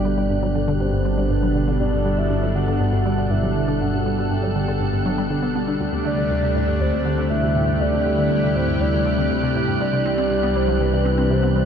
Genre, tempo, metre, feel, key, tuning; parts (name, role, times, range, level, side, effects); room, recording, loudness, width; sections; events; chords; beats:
ambient, sequencer-driven space music; 120 BPM; 4/4; straight; G major; A4 = 440 Hz
soft octave-layered synth lead; melody; 0.0-11.7 s; B4 to G5; -26 LUFS; left 1 dB; chorus, tremolo, ping-pong delay
lush unison pad; sustained chords; 0.0-11.7 s; B2 to A4; -22 LUFS; equal; chorus
fat analog bass; bass; 0.0-11.7 s; G1 to D2; -24 LUFS; equal
wind-like tuned noise texture; texture; 0.0-11.7 s; F#6; -33 LUFS; right 1 dB; built-in reverb
resonant blip pluck; riff; 0.1-11.6 s; D2 to D4; -26 LUFS; equal; chorus, ping-pong delay
moderate lush hall reverb, RT60 2.5 s; dark, warm production; -18 LUFS; side -8 dB against mid
0.0-11.7 A section
0.0 Gmaj7; 5.8 D7sus4; 9.8 Cadd9
0.30 0.80 1.30 | 1.80 2.30 2.80 3.30 | 3.80 4.30 4.80 5.30 | 5.80 6.30 6.80 7.30 | 7.80 8.30 8.80 9.30 | 9.80 10.30 10.80 11.30